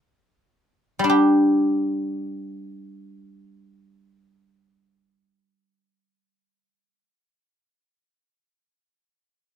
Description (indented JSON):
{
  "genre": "chinese traditional, Chinese solo plucked strings",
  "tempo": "free time",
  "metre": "none",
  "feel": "none",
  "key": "unclear",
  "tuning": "A4 = 440 Hz",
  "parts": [
    { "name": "guzheng", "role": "solo", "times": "1.0-7.1 s", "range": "G3 to G4", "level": "-19 LUFS", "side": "equal", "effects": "none" }
  ],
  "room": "light reverb",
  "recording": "none",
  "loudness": "-18 LUFS",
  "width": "side -9 dB against mid",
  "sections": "0.0-1.1 A section; 1.1-7.5 B section",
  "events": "none",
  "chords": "none"
}